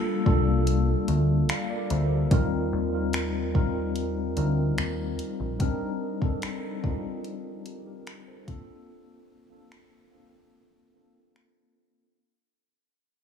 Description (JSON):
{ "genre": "contemporary R&B", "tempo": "73 BPM", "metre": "4/4", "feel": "straight", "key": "unclear", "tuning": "A4 = 440 Hz", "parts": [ { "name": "mellow tine electric piano", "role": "accompaniment", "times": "0.0-12.2 s", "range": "G3 to F5", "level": "-29 LUFS", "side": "left 1 dB", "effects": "medium stereo tremolo, low-pass filter" }, { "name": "deep dub picked electric bass", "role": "bass", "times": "0.3-5.6 s", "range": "Bb1 to Eb2", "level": "-26 LUFS", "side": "left 1 dB", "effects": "none" }, { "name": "smooth R&B drum kit", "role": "drums", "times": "0.3-11.5 s", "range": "finger snaps, hi-hat, kick drum", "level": "-28 LUFS", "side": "equal", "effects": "none" } ], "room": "little or no reverb", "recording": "studio reverb", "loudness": "-24 LUFS", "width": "side -7 dB against mid", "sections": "0.0-12.2 A section", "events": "fade-out 0.0-12.2; filter sweep on tine electric piano 0.0-12.2; break 8.9-12.2", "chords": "0.0 Gm7; 2.3 Eb6; 5.6 Cm7; 8.5 Bbmaj7" }